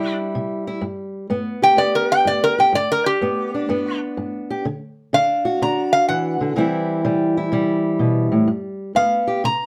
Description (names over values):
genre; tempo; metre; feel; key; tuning
acoustic country blues, solo or duo; 125 BPM; 4/4; swing 67% on 8ths; G major; A4 = 440 Hz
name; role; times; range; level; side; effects
metal-body resonator slide guitar; melody; 0.0-9.7 s; G4 to Bb5; -20 LUFS; equal; none
fingerpicked old ladder-braced acoustic guitar; accompaniment; 0.0-9.7 s; G2 to G4; -23 LUFS; equal; none
room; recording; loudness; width
moderate studio reverb, RT60 0.6 s; none; -20 LUFS; mono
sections
0.0-9.7 A section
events
resonator guitar played with a steel bar solo 0.0-9.7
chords
0.0 C; 0.8 G; 4.7 D; 6.6 C; 8.5 G